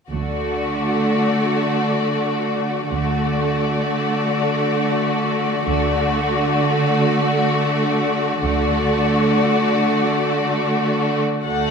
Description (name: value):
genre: classical, slow romantic movement for string orchestra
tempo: 43 BPM (dotted quarters)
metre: 6/8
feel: rubato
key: D major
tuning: A4 = 438 Hz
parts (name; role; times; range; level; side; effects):
- rich studio violin section; melody; 0.1-11.7 s; D5 to F#5; -25 LUFS; left 7 dB; none
- rich studio violin section; second line; 0.1-11.7 s; F#4 to D5; -23 LUFS; left 1 dB; none
- bright studio viola section; accompaniment; 0.1-11.7 s; A3 to A4; -22 LUFS; right 1 dB; none
- rich studio cello section; bass; 0.1-11.2 s; D3; -24 LUFS; right 3 dB; none
- rich studio double bass section; bass; 0.1-11.7 s; D2; -28 LUFS; right 3 dB; none
room: wet concert hall reverb, RT60 1.8 s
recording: minimal, uncompressed stereo recording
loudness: -17 LUFS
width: side -6 dB against mid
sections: 0.1-11.5 A section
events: none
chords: 0.1 D